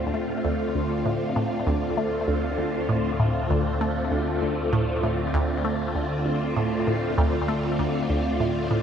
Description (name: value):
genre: ambient, sequencer-driven space music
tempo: 98 BPM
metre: 4/4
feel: straight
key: D minor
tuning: A4 = 440 Hz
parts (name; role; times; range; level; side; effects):
- phased string machine; sustained chords; 0.0-8.8 s; D3 to F4; -26 LUFS; equal; ensemble chorus, phaser
- resonant blip pluck; riff; 0.0-8.8 s; D2 to A3; -26 LUFS; equal; phaser, ping-pong delay
- analog drone; bass; 1.6-8.8 s; D2; -34 LUFS; equal; chorus
- wind-like tuned noise texture; texture; 0.2-8.8 s; F4 to D5; -34 LUFS; right 1 dB; built-in reverb
room: wet plate reverb, RT60 2.7 s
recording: dreamy mix soaked in reverb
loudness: -22 LUFS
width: side -8 dB against mid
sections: 0.0-8.8 A section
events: none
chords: 0.0 Dm7